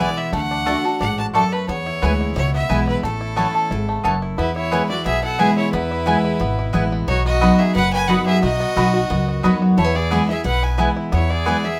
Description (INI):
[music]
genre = bluegrass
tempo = 178 BPM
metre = 4/4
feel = straight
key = unclear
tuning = A4 = 440 Hz
[part]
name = bluegrass banjo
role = melody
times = 0.0-11.8 s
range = A3 to A4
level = -29 LUFS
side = equal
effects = none
[part]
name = bright fiddle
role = melody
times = 0.0-11.8 s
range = A4 to A5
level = -27 LUFS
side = equal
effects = none
[part]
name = picked steel-string acoustic guitar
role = accompaniment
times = 0.0-11.8 s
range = E2 to F#4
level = -23 LUFS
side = equal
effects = none
[part]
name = mandolin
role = stabs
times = 0.0-11.6 s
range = A3 to B5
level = -24 LUFS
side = equal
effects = none
[part]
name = upright bass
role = bass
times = 0.0-11.5 s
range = F#1 to E2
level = -26 LUFS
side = equal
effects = none
[part]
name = clear fiddle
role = second line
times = 4.4-11.8 s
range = E4 to B4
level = -29 LUFS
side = equal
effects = none
[sound]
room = moderate studio reverb, RT60 0.5 s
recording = none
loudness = -19 LUFS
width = mono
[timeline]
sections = 0.0-4.4 A section; 4.4-11.8 B section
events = none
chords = 0.3 D; 1.7 E; 3.0 Aadd9; 4.4 E; 7.1 B; 9.8 E